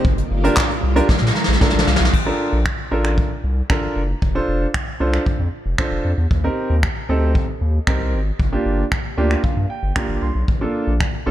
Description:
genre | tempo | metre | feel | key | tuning
dance-pop | 115 BPM | 4/4 | straight | Bb major | A4 = 438 Hz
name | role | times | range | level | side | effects
warm baby grand piano | accompaniment | 0.0-11.3 s | Bb3 to C6 | -22 LUFS | right 2 dB | sidechain pumping
string machine, full ensemble | sustained chords | 0.0-2.1 s | D3 to F4 | -28 LUFS | equal | ensemble chorus, sidechain pumping
round analog bass | bass | 0.0-11.3 s | F1 to Bb2 | -20 LUFS | equal | sidechain pumping
soft brush drum kit | drums | 0.0-11.1 s | crash cymbal, finger snaps, handclaps, hi-hat, kick drum, snare drum | -20 LUFS | equal | none
room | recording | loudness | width
small room ambience | dark, warm production | -17 LUFS | side -12 dB against mid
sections
0.0-2.1 A section; 2.1-11.3 B section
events
drum fill 1.1-2.1; grand piano fill 1.1-2.1, 8.9-10.5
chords
0.0 Gm7; 1.1 Bbmaj7; 4.2 F6; 6.3 Eb6; 8.4 Gm7; 10.5 Bbmaj7

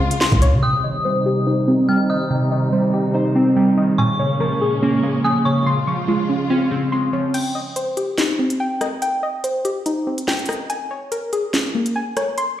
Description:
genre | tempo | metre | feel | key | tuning
hip hop, drill | 143 BPM | 4/4 | half-time | C phrygian | A4 = 440 Hz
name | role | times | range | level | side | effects
dark studio string section | sustained chords | 0.0-7.3 s | Bb2 to F4 | -26 LUFS | left 1 dB | low-pass filter
soft round pluck | arpeggios | 0.0-12.6 s | Db3 to Db6 | -22 LUFS | left 1 dB | chorus, low-pass filter, digital delay
drill drum kit | drums | 0.1-0.5, 7.3-12.5 s | crash cymbal, handclaps, hi-hat, kick drum, rim click, snare drum | -23 LUFS | equal | none
long sustained 808-style bass | bass | 0.3-0.6 s | Db2 to Db3 | -16 LUFS | equal | none
dark detuned synth bell | second line | 0.6-5.7 s | Db6 to F6 | -25 LUFS | left 2 dB | chorus, digital delay
glassy digital keys | accompaniment | 0.6-7.4 s | Bb2 to C5 | -18 LUFS | right 2 dB | chorus, low-pass filter
room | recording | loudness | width
light reverb, digital ambience | played on a big sound system in a bare room, stone room reverb | -17 LUFS | side -12 dB against mid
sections
0.6-7.3 A section; 7.3-12.6 B section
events
filter sweep 0.6-7.3; break 7.3-12.6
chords
0.0 Dbmaj7; 0.6 Cm; 4.0 Bbm7; 5.7 Dbmaj7; 7.3 Cm; 10.7 Bbm7

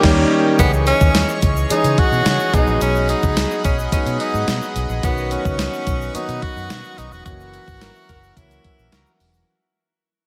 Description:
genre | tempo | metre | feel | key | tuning
1980s-style pop | 108 BPM | 4/4 | straight | unclear | A4 = 441 Hz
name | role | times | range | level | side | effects
breathy tenor saxophone | melody | 0.0-9.2 s | B3 to G4 | -25 LUFS | equal | delay, slapback echo
clear concert grand piano | accompaniment | 0.0-9.5 s | D#3 to G#4 | -24 LUFS | equal | slapback echo
chorused pulse-width pad | sustained chords | 0.0-9.5 s | G#4 to C#6 | -30 LUFS | equal | none
vintage muted fingered electric bass | bass | 0.0-9.4 s | E1 to C#3 | -25 LUFS | equal | none
clean 12-bit digital drum machine | drums | 0.0-9.3 s | crash cymbal, hi-hat, kick drum, snare drum, tambourine | -22 LUFS | equal | none
egg shaker | percussion | 0.6-9.5 s | none | -40 LUFS | equal | none
mellow horn section | stabs | 7.8-9.1 s | E4 to A#4 | -56 LUFS | equal | none
room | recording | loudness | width
moderate lush hall reverb, RT60 2.6 s | big arena sound | -18 LUFS | mono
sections
0.6-9.5 A section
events
band accent 0.0-0.6, 7.3-9.5; fade-out 0.6-9.5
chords
0.0 D#7; 0.6 C#madd9; 2.5 G#m7; 5.0 Badd9; 7.3 F#7

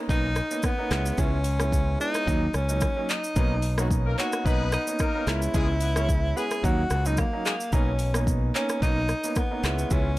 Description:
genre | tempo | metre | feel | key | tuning
afrobeats | 110 BPM | 4/4 | swing 55% on 16ths | unclear | A4 = 439 Hz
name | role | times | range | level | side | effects
warm grand piano | accompaniment | 0.0-10.1 s | F#3 to E4 | -32 LUFS | right 3 dB | none
breathy tenor saxophone | melody | 0.1-10.2 s | A#3 to G#4 | -29 LUFS | equal | none
modern bright fingered electric bass | bass | 0.1-10.2 s | B1 to D#2 | -26 LUFS | equal | none
afro-pop drum kit | drums | 0.1-10.0 s | handclaps, hi-hat, kick drum, rim click, shaker | -28 LUFS | equal | none
warm horn section | second line | 3.8-7.5 s | F#3 to C#5 | -34 LUFS | left 4 dB | none
room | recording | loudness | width
small room ambience | none | -23 LUFS | side -17 dB against mid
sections
0.0-10.2 A section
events
none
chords
0.0 Bmaj9; 0.9 C#m7; 2.3 D#m7; 3.4 Bmaj9; 5.3 C#m7; 6.6 D#m7; 7.7 Bmaj9; 9.6 C#m7

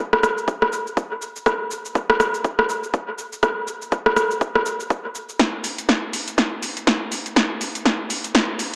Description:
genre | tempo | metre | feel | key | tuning
afro house | 122 BPM | 4/4 | swing 58% on 16ths | none | none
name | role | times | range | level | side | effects
deep house drum kit | drums | 0.1-8.7 s | cabasa, hi-hat, rim click, snare drum | -19 LUFS | equal | overdrive, dub echo
electronic kick drum | drums | 0.5-8.5 s | none | -23 LUFS | equal | overdrive, high-pass filter on kick, high-pass filter on room
room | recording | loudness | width
wet spring reverb, RT60 1.8 s | echo-heavy mix, small speaker sound | -19 LUFS | side -29 dB against mid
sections
0.0-8.8 A section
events
build-up 0.0-8.8; drum fill 5.4-8.8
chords
none

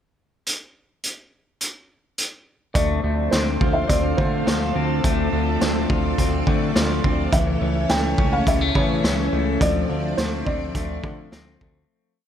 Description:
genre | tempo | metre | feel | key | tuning
dream pop | 105 BPM | 4/4 | straight | D minor | A4 = 445 Hz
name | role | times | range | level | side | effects
raw garage drum kit | drums | 0.5-11.7 s | hi-hat, kick drum, snare drum | -23 LUFS | right 1 dB | none
felt-muted upright piano | melody | 2.7-11.3 s | C5 to G5 | -26 LUFS | equal | tape echo
string machine, violins | sustained chords | 2.7-11.9 s | E3 to D5 | -27 LUFS | right 1 dB | ensemble chorus
electric guitar at the edge of break-up | arpeggios | 2.8-12.3 s | E3 to F4 | -26 LUFS | left 4 dB | wide subtle chorus, tape echo
fat analog bass | bass | 2.8-11.9 s | C#2 to D3 | -25 LUFS | right 1 dB | none
drifting glass-harmonics texture | texture | 3.7-9.9 s | E5 to A5 | -35 LUFS | right 3 dB | chorus, built-in reverb, tape echo
room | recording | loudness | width
light reverb, studio ambience | none | -19 LUFS | side -9 dB against mid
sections
0.5-2.8 pickup bar; 2.8-11.9 A section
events
fade-out 9.6-11.9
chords
0.5 N.C.; 2.8 Dm7; 7.3 A/C#; 9.6 Dm7

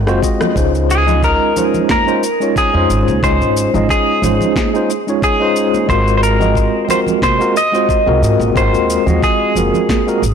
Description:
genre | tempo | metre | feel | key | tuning
sunset chillout | 90 BPM | 4/4 | swing 54% on 16ths | Db major | A4 = 440 Hz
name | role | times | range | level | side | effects
upright bass | bass | 0.0-10.3 s | Gb1 to Ab2 | -16 LUFS | equal | none
tine electric piano | accompaniment | 0.1-10.2 s | Ab3 to Eb5 | -16 LUFS | moving between left 5 dB and right 4 dB | medium stereo tremolo, auto-pan, low-pass filter, tape echo
electronic rim click, shaker and snare drum | drums | 0.1-10.3 s | none | -25 LUFS | left 1 dB | overdrive
electronic kick drum | drums | 0.2-10.0 s | none | -19 LUFS | equal | none
congas | percussion | 0.4-10.0 s | none | -24 LUFS | right 4 dB | none
semi-hollow electric guitar | melody | 0.9-10.3 s | Ab4 to Eb5 | -16 LUFS | equal | wide subtle chorus, ping-pong delay
room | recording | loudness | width
light reverb | blown-out, overdriven recording, overdrive | -12 LUFS | side -7 dB against mid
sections
0.6-10.3 A section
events
drum fill 0.0-0.6; band accent 0.4-0.7; filter sweep on tine electric piano 0.6-10.3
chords
0.0 Ab13; 0.6 Dbmaj9; 5.9 Ab13

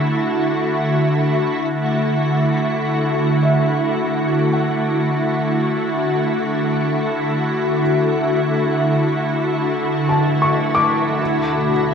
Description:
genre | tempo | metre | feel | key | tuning
ambient | 54 BPM | 4/4 | straight | D major | A4 = 440 Hz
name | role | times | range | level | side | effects
soft additive organ-like pad | sustained chords | 0.0-11.9 s | D2 to F#4 | -16 LUFS | equal | ensemble chorus, built-in reverb, cassette tape, plate reverb
felt-muted upright piano | arpeggios | 3.4-11.9 s | E5 to D6 | -23 LUFS | left 1 dB | cassette tape, analog delay, plate reverb
room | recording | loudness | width
wet studio reverb, RT60 0.5 s | home recording on cassette | -16 LUFS | side -6 dB against mid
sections
0.0-2.3 A section; 2.3-11.9 B section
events
fade-in on felt piano 2.3-11.9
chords
0.0 D; 11.2 Bm/D

